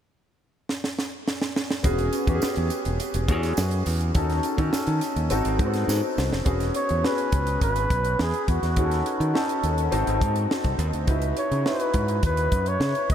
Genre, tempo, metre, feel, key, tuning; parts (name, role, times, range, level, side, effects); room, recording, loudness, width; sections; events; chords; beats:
polished 1980s jazz-funk pop; 104 BPM; 4/4; straight; E major; A4 = 441 Hz
tight funk drum kit; drums; 0.7-13.1 s; hi-hat, kick drum, snare drum; -28 LUFS; equal
warm concert grand piano; accompaniment; 1.8-13.1 s; B3 to B4; -27 LUFS; left 1 dB; lush chorus
modern bright fingered electric bass; bass; 1.8-13.1 s; E1 to D#3; -25 LUFS; equal
tambourine; percussion; 1.8-6.3 s; -41 LUFS; right 7 dB
breathy flugelhorn; melody; 6.8-13.1 s; F#4 to C#5; -27 LUFS; equal; ping-pong delay
moderate huge ambient reverb, RT60 8.0 s; dreamy mix soaked in reverb; -22 LUFS; side -9 dB against mid
0.0-1.8 A section; 1.8-6.5 B section; 6.5-13.1 C section
drum fill 0.7-1.8, 5.9-6.5
0.0 N.C.; 1.8 E69; 4.2 D#m7b5; 5.3 G#7b9; 6.5 E69; 8.8 D#m7b5; 9.9 G#7b9; 11.1 C#m11
0.11 0.69 1.27 | 1.84 2.42 3.00 3.58 | 4.15 4.73 5.31 5.88 | 6.46 7.04 7.62 8.19 | 8.77 9.35 9.93 10.50 | 11.08 11.66 12.24 12.81